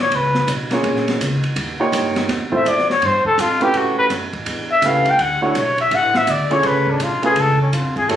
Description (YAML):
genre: jazz, small-group swing and bop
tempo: 166 BPM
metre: 4/4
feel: swing 64% on 8ths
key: unclear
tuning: A4 = 440 Hz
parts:
  - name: breathy trumpet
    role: melody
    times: 0.0-8.2 s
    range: C#4 to G5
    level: -16 LUFS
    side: left 2 dB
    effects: none
  - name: upright bass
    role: bass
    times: 0.0-8.2 s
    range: A1 to A2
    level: -24 LUFS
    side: equal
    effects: none
  - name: open jazz drum kit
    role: drums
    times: 0.1-8.2 s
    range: hi-hat, kick drum, ride cymbal, snare drum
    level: -24 LUFS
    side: right 1 dB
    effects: none
  - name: warm concert grand piano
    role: accompaniment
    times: 0.7-8.2 s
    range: A3 to C#5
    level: -20 LUFS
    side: right 2 dB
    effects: none
room: moderate small room reverb, RT60 0.5 s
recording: recorded on a phone in the room, studio reverb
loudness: -15 LUFS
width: side -10 dB against mid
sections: 0.0-8.2 A section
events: trumpet solo 0.0-8.2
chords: 0.0 Aadd9; 0.8 Bbm7; 1.6 D#9; 2.3 Fmaj7; 3.7 A9; 5.2 Dmaj9; 6.6 C#7b13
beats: 0.12 0.48 | 0.85 1.21 1.57 1.93 | 2.30 2.66 3.02 3.38 | 3.74 4.11 4.47 4.83 | 5.19 5.55 5.92 6.28 | 6.64 7.00 7.36 7.72 | 8.09